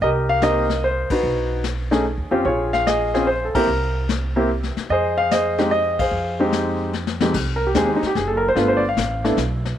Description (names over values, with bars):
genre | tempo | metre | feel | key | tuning
jazz piano trio | 147 BPM | 3/4 | swing 67% on 8ths | F minor | A4 = 438 Hz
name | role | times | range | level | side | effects
warm baby grand piano | melody | 0.0-9.5 s | F2 to F5 | -19 LUFS | equal | none
upright bass | bass | 0.0-9.8 s | F#1 to F2 | -26 LUFS | right 1 dB | none
vintage brush drum kit | drums | 0.0-9.8 s | brushed snare drum, crash cymbal, hi-hat, kick drum, ride cymbal, snare drum | -27 LUFS | left 6 dB | none
room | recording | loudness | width
moderate spring reverb, RT60 2.5 s | 1960s-style stereo | -18 LUFS | side -10 dB against mid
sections
0.0-7.3 A section; 7.3-9.8 B section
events
band accent 1.0, 3.5, 5.9; drum fill 6.9-7.3; grand piano solo 7.3-9.8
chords
0.0 Cm7; 1.2 Badd9; 2.5 Bbm7; 3.7 C7(no3); 4.9 Fm7; 7.3 F#dim7(no3); 8.6 G7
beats
| 0.01 0.42 0.83 | 1.23 1.64 2.05 | 2.46 2.86 3.27 | 3.68 4.09 4.49 | 4.90 5.31 5.71 | 6.12 6.53 6.94 | 7.34 7.75 8.16 | 8.56 8.97 9.38 | 9.78